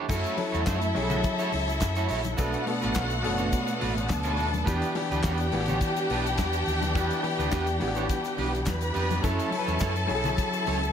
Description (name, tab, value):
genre	disco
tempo	105 BPM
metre	4/4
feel	straight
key	unclear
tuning	A4 = 436 Hz
part	electric guitar at the edge of break-up	accompaniment	0.0-10.8 s	A3 to E5	-34 LUFS	right 6 dB	none
part	clear symphonic string section	sustained chords	0.0-10.9 s	E3 to A4	-33 LUFS	equal	none
part	rich studio string section	second line	0.1-10.9 s	E4 to B5	-31 LUFS	left 1 dB	none
part	clear grand piano	accompaniment	0.1-10.9 s	B2 to B4	-32 LUFS	left 3 dB	none
part	overdriven fingered electric bass	bass	0.1-10.9 s	F#1 to F#2	-30 LUFS	equal	none
part	damped 70s drum kit	drums	0.1-10.9 s	crash cymbal, handclaps, hi-hat, kick drum, snare drum	-33 LUFS	equal	none
part	congas	percussion	0.1-10.8 s	none	-38 LUFS	left 4 dB	none
part	egg shaker	percussion	0.1-10.9 s	none	-46 LUFS	left 8 dB	none
room	light reverb, studio ambience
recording	none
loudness	-24 LUFS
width	side -8 dB against mid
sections	0.1-10.9 A section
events	none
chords	0.1 F#m7; 2.4 Bm7; 4.7 Em7; 9.2 F#m7